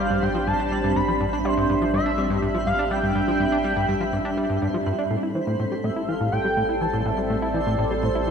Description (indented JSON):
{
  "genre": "ambient",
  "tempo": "123 BPM",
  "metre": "4/4",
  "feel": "straight",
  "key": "unclear",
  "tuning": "A4 = 440 Hz",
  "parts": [
    { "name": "pulse-width lead", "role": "melody", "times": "0.0-8.3 s", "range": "C5 to B5", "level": "-27 LUFS", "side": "equal", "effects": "chorus, tape echo" },
    { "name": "sweeping resonant pad", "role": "sustained chords", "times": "0.0-8.3 s", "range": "G3 to E5", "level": "-25 LUFS", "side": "right 1 dB", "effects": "chorus, phaser" },
    { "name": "plucky analog bass", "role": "riff", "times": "0.0-8.3 s", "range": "G2 to E4", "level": "-26 LUFS", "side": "left 1 dB", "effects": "tape echo" },
    { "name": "round analog bass", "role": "bass", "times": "0.0-8.3 s", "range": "A1", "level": "-34 LUFS", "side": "left 1 dB", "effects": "none" },
    { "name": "twinkling granular texture", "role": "texture", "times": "0.0-8.3 s", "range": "C4 to B5", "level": "-34 LUFS", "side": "right 2 dB", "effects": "built-in reverb, ensemble chorus" }
  ],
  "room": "wet plate reverb, RT60 2.2 s",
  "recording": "dreamy mix soaked in reverb",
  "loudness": "-21 LUFS",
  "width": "side -6 dB against mid",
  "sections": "0.0-8.3 A section",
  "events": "none",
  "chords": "0.0 Gsus4/A; 5.1 Am7"
}